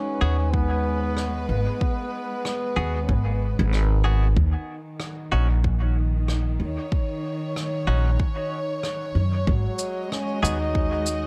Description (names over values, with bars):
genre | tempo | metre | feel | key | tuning
ambient dub | 94 BPM | 4/4 | swing 58% on 16ths | G# minor | A4 = 440 Hz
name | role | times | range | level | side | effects
warm trombone | melody | 0.0-3.4, 9.5-11.3 s | F#3 to D#4 | -32 LUFS | equal | dub echo
dark chamber string section | sustained chords | 0.0-11.3 s | D#3 to D#5 | -34 LUFS | equal | none
vibraphone with soft mallets | arpeggios | 0.0-1.1 s | D#4 | -40 LUFS | equal | dub echo
direct-recorded clean electric guitar | stabs | 0.2-10.6 s | B3 to G#4 | -35 LUFS | equal | dub echo
upright bass | bass | 0.2-11.3 s | G#1 to F#2 | -24 LUFS | equal | none
electronic kick drum | drums | 0.5-10.9 s | none | -27 LUFS | equal | none
rim click and shaker | drums | 1.2-11.2 s | none | -38 LUFS | equal | dub echo
room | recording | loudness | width
light reverb, small room reverb | none | -24 LUFS | mono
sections
0.0-11.3 A section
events
none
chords
0.0 G#m7; 4.4 D#m7; 9.5 G#7(no3)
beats
0.54 1.17 | 1.81 2.45 3.09 3.73 | 4.37 5.00 5.64 6.28 | 6.92 7.56 8.20 8.83 | 9.47 10.11 10.75